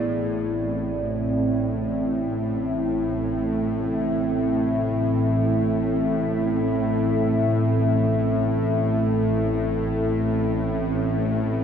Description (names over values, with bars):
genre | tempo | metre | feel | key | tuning
dark ambient drone | free time | none | none | unclear | A4 = 441 Hz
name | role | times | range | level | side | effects
dark analog pad | sustained chords | 0.0-11.6 s | C4 to E5 | -24 LUFS | equal | chorus, phaser
gamelan-type bossed gongs | arpeggios | 0.0-4.2 s | none | barely audible | none | none
bowed-like drone | drone | 0.0-11.6 s | A1 to A2 | -24 LUFS | equal | built-in reverb
room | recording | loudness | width
moderate plate reverb, RT60 3.1 s | dreamy mix soaked in reverb | -21 LUFS | side -8 dB against mid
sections
0.1-11.6 A section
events
none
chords
0.1 Am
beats
free time